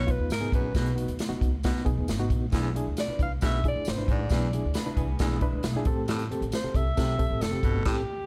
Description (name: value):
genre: uptempo 1960s-style soul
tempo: 135 BPM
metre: 4/4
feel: straight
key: unclear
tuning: A4 = 440 Hz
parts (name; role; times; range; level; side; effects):
- breathy alto saxophone; melody; 0.0-8.3 s; G4 to F5; -35 LUFS; equal; none
- bright reed electric piano; accompaniment; 0.0-8.0 s; A2 to B4; -36 LUFS; equal; overdrive, fast tremolo
- growling baritone saxophone; riff; 0.0-8.0 s; E2 to C3; -36 LUFS; equal; none
- upright bass; bass; 0.0-8.0 s; F1 to D#2; -33 LUFS; equal; none
- swinging big-band drum kit; drums; 0.1-8.0 s; crash cymbal, hi-hat, kick drum, snare drum; -31 LUFS; equal; none
- tambourine; percussion; 0.3-7.5 s; none; -48 LUFS; equal; none
- congas; percussion; 0.4-7.7 s; none; -45 LUFS; equal; none
- electric guitar through a small old amp; riff; 4.7-5.8 s; G#3 to B4; -42 LUFS; equal; none
room: little or no reverb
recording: dark, warm production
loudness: -27 LUFS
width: mono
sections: 0.0-8.3 A section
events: band accent 7.9-8.3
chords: 0.0 B; 2.5 E7; 5.9 Am7